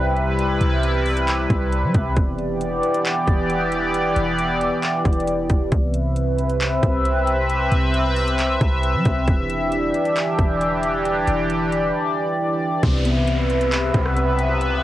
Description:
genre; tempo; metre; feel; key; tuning
hip hop, atmospheric cloud-rap; 135 BPM; 4/4; half-time; C major; A4 = 442 Hz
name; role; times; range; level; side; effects
sweeping resonant pad; sustained chords; 0.0-14.8 s; C3 to E5; -20 LUFS; equal; chorus, sidechain pumping
clean 808-style bass; bass; 0.0-14.8 s; E1 to G3; -24 LUFS; equal; none
impact and downlifter; sound effects; 0.0-0.4, 12.8-14.8 s; none; -32 LUFS; equal; none
trap drum kit; drums; 0.2-14.7 s; handclaps, hi-hat, kick drum, rim click; -22 LUFS; equal; cassette tape
soft electric-piano-like synth keys; arpeggios; 12.8-14.8 s; C3 to B3; -26 LUFS; left 1 dB; chorus, analog delay
room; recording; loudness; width
moderate studio reverb, RT60 0.6 s; home recording on cassette; -18 LUFS; side -14 dB against mid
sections
0.0-12.8 A section; 12.8-14.8 B section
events
impact 0.0-0.4; drums muted 11.9-12.8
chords
0.0 Cmaj7; 2.2 Em7; 5.7 Cmaj7; 9.3 Em7; 12.8 Cmaj7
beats
| 0.39 0.83 1.27 1.72 | 2.16 2.61 3.05 3.50 | 3.94 4.39 4.83 5.28 | 5.72 6.16 6.61 7.05 | 7.50 7.94 8.39 8.83 | 9.28 9.72 10.16 10.61 | 11.05 11.50 11.94 12.39 | 12.83 13.28 13.72 14.16 | 14.61

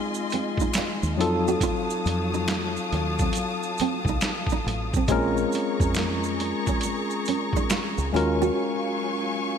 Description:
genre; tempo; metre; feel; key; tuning
R&B, neo-soul; 69 BPM; 4/4; swing 64% on 16ths; unclear; A4 = 439 Hz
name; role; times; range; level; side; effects
tine electric piano; accompaniment; 0.0-9.6 s; Gb3 to Bb4; -27 LUFS; left 2 dB; medium stereo tremolo
rich studio string section; sustained chords; 0.0-9.6 s; Gb3 to Eb6; -31 LUFS; left 2 dB; none
maracas and finger snaps; percussion; 0.1-8.6 s; none; -38 LUFS; right 4 dB; none
nylon-string guitar; second line; 0.3-8.5 s; A3 to Gb4; -31 LUFS; right 7 dB; wide subtle chorus
boom bap sampler-style drum kit; drums; 0.3-8.4 s; hi-hat, kick drum, snare drum; -28 LUFS; right 1 dB; gated reverb
deep dub fingered electric bass; bass; 1.0-8.5 s; A1 to F2; -28 LUFS; equal; none
room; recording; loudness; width
moderate lush hall reverb, RT60 2.6 s; bright 1980s-style digital production; -23 LUFS; side -7 dB against mid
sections
0.0-9.6 A section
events
break 8.6-9.6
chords
0.0 Fm7; 1.2 F7b9; 5.1 Bbm9; 8.1 Ebm11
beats
0.74 | 1.61 2.48 3.35 4.22 | 5.09 5.96 6.83 7.70 | 8.56 9.43

